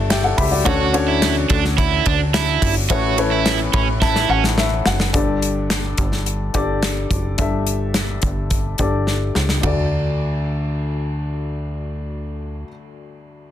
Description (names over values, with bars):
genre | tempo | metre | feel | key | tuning
piano-driven pop | 107 BPM | 4/4 | straight | D major | A4 = 439 Hz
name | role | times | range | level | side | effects
warm upright piano | accompaniment | 0.0-13.5 s | D2 to B5 | -23 LUFS | left 4 dB | plate reverb
plucky analog bass | bass | 0.0-12.6 s | F#1 to D2 | -22 LUFS | equal | none
modern studio drum kit | drums | 0.1-9.8 s | hi-hat, kick drum, ride cymbal, snare drum, toms | -21 LUFS | equal | none
overdriven semi-hollow guitar | riff | 0.7-4.4 s | C#4 to F#4 | -21 LUFS | right 11 dB | none
room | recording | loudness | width
light reverb | dense, heavily limited modern master | -17 LUFS | side -11 dB against mid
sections
0.0-5.1 A section; 5.1-9.6 B section; 9.6-11.9 C section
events
upright piano fill 0.0-0.7, 3.5-5.1; drum fill 4.0-5.1, 9.1-9.6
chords
0.0 Gsus2; 0.7 Dmaj7; 2.9 Aadd9; 5.1 Gsus2; 9.6 D